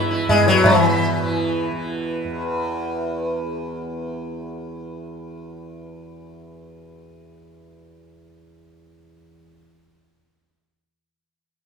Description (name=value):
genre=indian classical, Hindustani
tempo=171 BPM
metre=3/4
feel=straight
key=unclear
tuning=A4 = 440 Hz
part: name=sitar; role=melody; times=0.0-1.7 s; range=E3 to E4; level=-17 LUFS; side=left 2 dB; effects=none
part: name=tanpura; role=drone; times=0.0-9.4 s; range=E2 to E3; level=-27 LUFS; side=right 1 dB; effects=none
part: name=tabla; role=percussion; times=0.3-0.8 s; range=none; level=-21 LUFS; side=right 2 dB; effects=none
room=moderate scoring stage reverb, RT60 1.7 s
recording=minimal, uncompressed stereo recording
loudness=-18 LUFS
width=side -5 dB against mid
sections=0.6-2.7 A section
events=none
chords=none